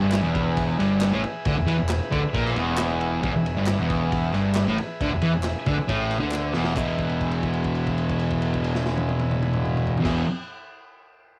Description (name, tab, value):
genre	garage rock duo or trio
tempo	136 BPM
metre	4/4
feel	straight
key	E mixolydian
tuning	A4 = 440 Hz
part	overdriven combo organ	sustained chords	0.0-10.2 s	G#4 to E5	-36 LUFS	equal	cassette tape
part	fuzz guitar	riff	0.0-10.2 s	E2 to E3	-25 LUFS	equal	distortion, cassette tape
part	fuzz picked electric bass	bass	0.0-10.2 s	E1 to E2	-33 LUFS	equal	overdrive
part	crunchy breakbeat drum kit	drums	0.1-10.2 s	crash cymbal, kick drum, ride cymbal, snare drum, toms	-34 LUFS	equal	cassette tape
part	group handclap	percussion	0.1-7.0 s	none	-38 LUFS	equal	none
room	light reverb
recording	home recording on cassette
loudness	-24 LUFS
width	mono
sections	0.0-6.8 A section; 6.8-10.3 B section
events	drum fill 6.3-6.8; held note 6.8-10.0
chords	0.0 E